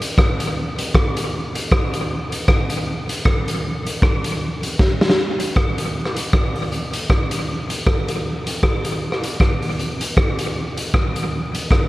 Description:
ska; 156 BPM; 4/4; swing 57% on 8ths
raw garage drum kit; drums; 0.0-11.8 s; hi-hat, kick drum, rim click, snare drum; -18 LUFS; equal; tape echo
light reverb; vinyl crackle; -18 LUFS; side -18 dB against mid
0.0-5.2 A section; 5.2-11.9 A section
drum fill 4.8-5.2

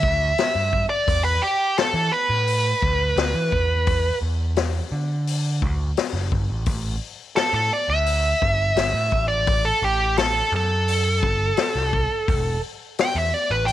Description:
blues rock power trio and southern rock; 86 BPM; 4/4; straight; A4 = 439 Hz
nasal lead guitar with a parked wah; melody; 0.0-13.7 s; G4 to G5; -21 LUFS; right 1 dB; overdrive
overdriven picked electric bass; bass; 0.0-13.7 s; E1 to E3; -24 LUFS; right 1 dB
vintage drum kit; drums; 0.0-13.7 s; hi-hat, kick drum, snare drum; -26 LUFS; left 3 dB
small room ambience; 1960s-style stereo; -19 LUFS; side -13 dB against mid
0.0-13.7 A section
lead electric guitar solo 0.0-13.7
0.0 E7(no3); 6.7 A7(no3); 12.3 N.C.

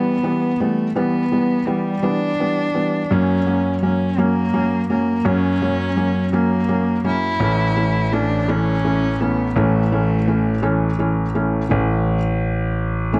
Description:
six-eight pop ballad; 56 BPM (dotted quarters); 6/8; straight; A4 = 440 Hz
warm cello; melody; 0.0-11.0 s; G3 to E4; -24 LUFS; equal
felt-muted upright piano; accompaniment; 0.0-13.2 s; E3 to C#4; -23 LUFS; equal
warm concert grand piano; bass; 3.1-13.2 s; A1 to F#2; -23 LUFS; equal
light reverb, studio reverb; dark, warm production; -19 LUFS; mono
0.0-11.7 A section; 11.7-13.2 B section
felt piano solo 11.7-13.2
0.0 Em; 3.1 F#; 7.4 A

